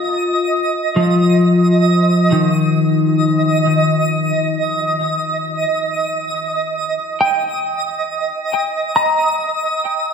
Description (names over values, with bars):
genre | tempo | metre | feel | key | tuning
ambient | 67 BPM | 4/4 | straight | unclear | A4 = 444 Hz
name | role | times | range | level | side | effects
clean electric guitar | arpeggios | 0.0-10.1 s | Eb3 to Bb5 | -16 LUFS | left 2 dB | wide subtle chorus, ping-pong delay
twinkling granular texture | texture | 0.0-10.1 s | Eb5 to Eb6 | -19 LUFS | right 3 dB | built-in reverb
room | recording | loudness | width
wet plate reverb, RT60 2.2 s | dreamy mix soaked in reverb | -14 LUFS | side -6 dB against mid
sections
0.0-10.1 A section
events
fade-in on clean electric guitar 0.0-10.1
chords
0.0 N.C.; 1.4 Ebsus2; 5.0 Eb; 8.5 Eb5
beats
0.51 | 1.42 2.31 3.21 4.10 | 5.00 5.88 6.77 7.65 | 8.53 9.41